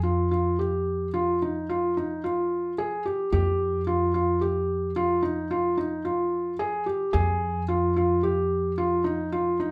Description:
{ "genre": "contemporary instrumental, chamber music in an uneven meter", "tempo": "110 BPM", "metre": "7/4", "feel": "straight", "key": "F minor", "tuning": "A4 = 440 Hz", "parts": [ { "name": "felt-muted upright piano", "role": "arpeggios", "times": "0.0-9.7 s", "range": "Eb4 to Ab4", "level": "-27 LUFS", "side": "equal", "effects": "none" }, { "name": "upright bass", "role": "bass", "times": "0.0-9.7 s", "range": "F2", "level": "-32 LUFS", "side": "equal", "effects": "none" } ], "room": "wet studio reverb, RT60 0.7 s", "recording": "heard from further back in the room", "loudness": "-26 LUFS", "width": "mono", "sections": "0.0-9.7 A section", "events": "none", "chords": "0.0 F7sus2" }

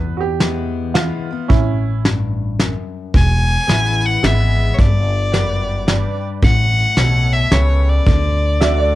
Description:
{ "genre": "honky-tonk and classic country", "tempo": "110 BPM", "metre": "3/4", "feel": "swing 65% on 8ths", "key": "unclear", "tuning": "A4 = 440 Hz", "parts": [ { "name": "bright upright piano", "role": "second line", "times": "0.0-2.0, 8.6-9.0 s", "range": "C#4 to E5", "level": "-22 LUFS", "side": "right 10 dB", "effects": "cassette tape" }, { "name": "picked steel-string acoustic guitar", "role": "accompaniment", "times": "0.0-9.0 s", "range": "E2 to F#4", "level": "-24 LUFS", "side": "left 5 dB", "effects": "cassette tape" }, { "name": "upright bass", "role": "bass", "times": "0.0-9.0 s", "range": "E1 to E2", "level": "-17 LUFS", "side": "equal", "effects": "none" }, { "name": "soft brush drum kit", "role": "drums", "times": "0.4-8.8 s", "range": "hi-hat, kick drum, snare drum", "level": "-17 LUFS", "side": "equal", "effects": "none" }, { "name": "bright fiddle", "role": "melody", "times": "3.2-9.0 s", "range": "C#5 to G#5", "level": "-20 LUFS", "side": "left 1 dB", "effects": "cassette tape" }, { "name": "honky-tonk upright piano", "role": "accompaniment", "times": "3.7-9.0 s", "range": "F#4 to E5", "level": "-29 LUFS", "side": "right 10 dB", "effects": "cassette tape" } ], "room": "light reverb", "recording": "home recording on cassette", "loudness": "-14 LUFS", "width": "side -15 dB against mid", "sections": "0.0-9.0 A section", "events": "none", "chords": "0.0 E; 1.5 A; 3.1 E; 4.8 G; 6.4 A7; 8.1 D" }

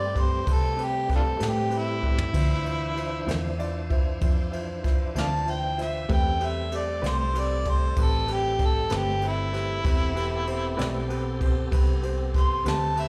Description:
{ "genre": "slow blues", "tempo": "64 BPM (dotted quarters)", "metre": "12/8", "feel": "straight", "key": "A minor", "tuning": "A4 = 439 Hz", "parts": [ { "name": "mellow harmonica", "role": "melody", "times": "0.0-13.1 s", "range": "D4 to C6", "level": "-30 LUFS", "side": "equal", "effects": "overdrive, slapback echo" }, { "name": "bright upright piano", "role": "accompaniment", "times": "0.0-13.1 s", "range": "C4 to D5", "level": "-36 LUFS", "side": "equal", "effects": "slapback echo" }, { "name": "tonewheel organ", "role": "sustained chords", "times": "0.0-13.1 s", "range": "E3 to C5", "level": "-39 LUFS", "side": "equal", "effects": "slow rotary speaker, overdrive, chorus vibrato" }, { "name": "vintage muted fingered electric bass", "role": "bass", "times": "0.0-13.1 s", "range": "E1 to C3", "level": "-31 LUFS", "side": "equal", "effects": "none" }, { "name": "jazz brush drum kit", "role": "drums", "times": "0.2-13.1 s", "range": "crash cymbal, kick drum, ride cymbal, snare drum, toms", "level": "-30 LUFS", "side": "equal", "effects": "none" }, { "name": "clean electric guitar", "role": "accompaniment", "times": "1.4-12.9 s", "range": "D3 to B4", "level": "-36 LUFS", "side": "equal", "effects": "tremolo, slapback echo" } ], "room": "studio reverb", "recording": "live gig heard through the venue's PA, club reverb", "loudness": "-26 LUFS", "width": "mono", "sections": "0.0-13.1 A section", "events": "harmonica solo 0.0-13.1; drum fill 2.0-2.3", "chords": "0.0 Am9; 2.3 Dm9; 6.1 Am9" }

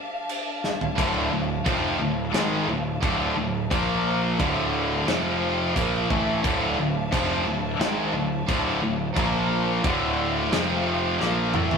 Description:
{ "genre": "heavy metal", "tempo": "88 BPM", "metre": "4/4", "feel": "straight", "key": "D minor", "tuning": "A4 = 440 Hz", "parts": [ { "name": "dark studio string section", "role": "sustained chords", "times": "0.0-11.8 s", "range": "F3 to Bb5", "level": "-33 LUFS", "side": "left 1 dB", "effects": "none" }, { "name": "modern studio drum kit", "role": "drums", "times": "0.3-11.8 s", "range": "crash cymbal, kick drum, snare drum, toms", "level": "-29 LUFS", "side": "right 1 dB", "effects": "none" }, { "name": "heavy high-gain guitar", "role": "riff", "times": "1.0-11.8 s", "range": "D2 to Bb3", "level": "-28 LUFS", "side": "left 4 dB", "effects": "distortion" }, { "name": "heavy high-gain guitar", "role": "riff", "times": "1.0-11.8 s", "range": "D2 to Bb3", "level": "-29 LUFS", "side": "right 6 dB", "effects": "distortion" }, { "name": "high-gain distorted guitar", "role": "riff", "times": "1.0-11.8 s", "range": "D2 to Bb3", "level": "-28 LUFS", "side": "equal", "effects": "distortion" }, { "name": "fuzz picked electric bass", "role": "bass", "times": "1.0-11.8 s", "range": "D1 to Bb1", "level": "-30 LUFS", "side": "equal", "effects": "overdrive" } ], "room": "moderate studio reverb, RT60 0.5 s", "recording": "rough rehearsal-room recording", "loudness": "-22 LUFS", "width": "side -6 dB against mid", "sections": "0.0-11.8 A section", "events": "half time 0.0-11.8; drum fill 0.6-1.0, 11.2-11.8", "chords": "0.0 Dm; 3.7 Bb5; 4.4 Dm; 5.1 F5; 5.7 Dm; 9.2 Bb5; 9.8 Dm; 10.5 F5; 11.2 Dm" }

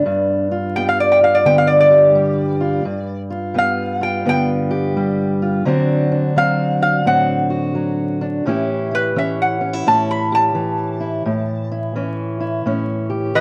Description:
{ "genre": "acoustic country blues, solo or duo", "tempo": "86 BPM", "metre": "4/4", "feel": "swing 64% on 8ths", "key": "unclear", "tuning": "A4 = 440 Hz", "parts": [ { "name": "fingerpicked steel-string acoustic guitar", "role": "accompaniment", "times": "0.0-13.4 s", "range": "G2 to G4", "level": "-21 LUFS", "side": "equal", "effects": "none" }, { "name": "lap resonator guitar", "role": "melody", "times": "0.8-13.4 s", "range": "B4 to B5", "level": "-18 LUFS", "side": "equal", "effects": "none" } ], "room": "light reverb", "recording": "worn, warbling old tape, cassette tape, vinyl crackle, warbly pitch drift", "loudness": "-18 LUFS", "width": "mono", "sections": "0.0-13.4 A section", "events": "resonator guitar played with a steel bar solo 0.0-13.4", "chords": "0.0 G7; 5.7 D7; 8.5 A7" }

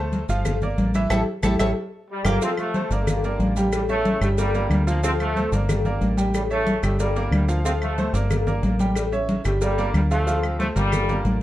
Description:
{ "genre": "latin, salsa", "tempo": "183 BPM", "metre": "4/4", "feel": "straight", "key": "unclear", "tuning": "A4 = 440 Hz", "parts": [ { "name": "Cuban tres", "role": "melody", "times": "0.0-2.4 s", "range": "A4 to G5", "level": "-29 LUFS", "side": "right 1 dB", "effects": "plate reverb" }, { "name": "bright concert grand piano", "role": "accompaniment", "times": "0.0-11.4 s", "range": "E3 to G5", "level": "-27 LUFS", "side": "right 2 dB", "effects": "none" }, { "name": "deep dub fingered electric bass", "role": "bass", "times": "0.0-11.4 s", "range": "G1 to D2", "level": "-23 LUFS", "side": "equal", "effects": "none" }, { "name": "congas", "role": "percussion", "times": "0.1-11.4 s", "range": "none", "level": "-26 LUFS", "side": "equal", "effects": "none" }, { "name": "cowbell", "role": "percussion", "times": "0.1-11.4 s", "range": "none", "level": "-31 LUFS", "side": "left 5 dB", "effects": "none" }, { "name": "maracas", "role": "percussion", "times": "0.1-11.4 s", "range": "none", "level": "-40 LUFS", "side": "right 7 dB", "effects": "none" }, { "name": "claves", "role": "percussion", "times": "0.5-11.1 s", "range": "none", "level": "-34 LUFS", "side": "equal", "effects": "none" }, { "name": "bright trombone section", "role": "melody", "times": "2.1-11.4 s", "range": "Bb2 to C4", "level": "-27 LUFS", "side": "equal", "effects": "plate reverb" } ], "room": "moderate studio reverb, RT60 0.6 s", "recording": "dark, warm production", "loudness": "-20 LUFS", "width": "side -14 dB against mid", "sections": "0.0-2.4 A section; 2.4-11.4 B section", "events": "Cuban tres solo 0.0-2.4; band accent 1.1-2.4", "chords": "0.5 Gm7; 1.1 A7; 1.8 Gm7; 2.4 Dm7; 3.1 Gm; 3.7 A7; 4.4 Gm7; 5.0 Dm7; 5.7 Gm; 6.3 A7; 7.0 Gm7; 7.6 Dm7; 8.3 Gm; 9.0 A7; 9.6 Gm7; 10.3 Dm7; 10.9 Gm" }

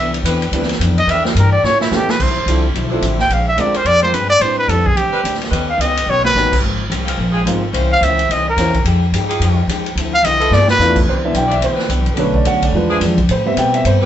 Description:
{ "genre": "jazz, big band swing", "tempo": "216 BPM", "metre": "4/4", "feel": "swing 60% on 8ths", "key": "C major", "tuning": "A4 = 440 Hz", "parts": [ { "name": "breathy trumpet", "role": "melody", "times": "0.0-11.0 s", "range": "E4 to G5", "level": "-15 LUFS", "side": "equal", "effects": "none" }, { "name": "hollow-body jazz guitar", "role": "accompaniment", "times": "0.0-14.0 s", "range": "G2 to B4", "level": "-25 LUFS", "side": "left 4 dB", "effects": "none" }, { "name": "upright bass", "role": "bass", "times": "0.0-14.1 s", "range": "G1 to B2", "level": "-18 LUFS", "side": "equal", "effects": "none" }, { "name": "swinging big-band drum kit", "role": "drums", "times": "0.1-13.9 s", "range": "crash cymbal, hi-hat, kick drum, ride cymbal, snare drum", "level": "-21 LUFS", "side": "equal", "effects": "none" }, { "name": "warm saxophone section", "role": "sustained chords", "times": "0.2-14.1 s", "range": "E3 to D5", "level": "-23 LUFS", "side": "left 1 dB", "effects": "none" }, { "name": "warm concert grand piano", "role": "accompaniment", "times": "0.5-8.7, 10.8-14.1 s", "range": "D3 to G5", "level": "-18 LUFS", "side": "right 2 dB", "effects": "none" } ], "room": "moderate studio reverb, RT60 0.5 s", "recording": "band playing live in one room, nothing above 8.0 kHz", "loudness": "-13 LUFS", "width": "side -11 dB against mid", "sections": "0.0-2.2 A section; 2.2-11.1 A section; 11.1-14.1 A section", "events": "trumpet solo 0.0-11.1; drum fill 1.6-2.2, 6.1, 10.5; grand piano solo 11.1-14.1", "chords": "0.0 Cmaj9; 1.1 Em7b5; 1.6 A7; 2.2 Dm9; 3.3 Bb9; 4.4 Am11; 5.5 Eb7alt; 6.6 Ab69; 7.7 C7b9; 8.9 Fm9; 10.0 Dm9; 10.5 G13; 11.1 Cmaj9; 12.2 Bm7; 12.7 E7b9; 13.3 Am9" }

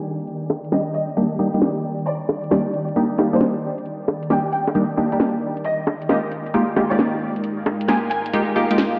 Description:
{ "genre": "UK garage, two-step garage", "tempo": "134 BPM", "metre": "4/4", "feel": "swing 66% on 16ths", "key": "unclear", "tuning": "A4 = 440 Hz", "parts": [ { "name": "punchy chord stab", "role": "stabs", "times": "0.0-9.0 s", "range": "G3 to G4", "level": "-24 LUFS", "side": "equal", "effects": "chorus, diffuse ambient delay" }, { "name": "ethereal airy pad", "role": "texture", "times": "0.0-9.0 s", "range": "Eb3 to G5", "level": "-31 LUFS", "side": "equal", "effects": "ensemble chorus, built-in reverb" }, { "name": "garage drum kit", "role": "drums", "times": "0.2-8.9 s", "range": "bongos, hi-hat, snare drum", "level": "-26 LUFS", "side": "equal", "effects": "small room ambience" }, { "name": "dark chamber violin section", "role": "melody", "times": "0.7-8.2 s", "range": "C5 to Ab5", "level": "-30 LUFS", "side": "equal", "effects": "vintage 12-bit sampler grit, diffuse ambient delay" } ], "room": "wet lush hall reverb, RT60 1.7 s", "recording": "dreamy mix soaked in reverb, low-pass filter", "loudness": "-21 LUFS", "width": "mono", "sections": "0.0-9.0 A section", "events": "filter sweep 0.0-9.0", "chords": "0.0 Ebmaj7; 5.6 Fm11" }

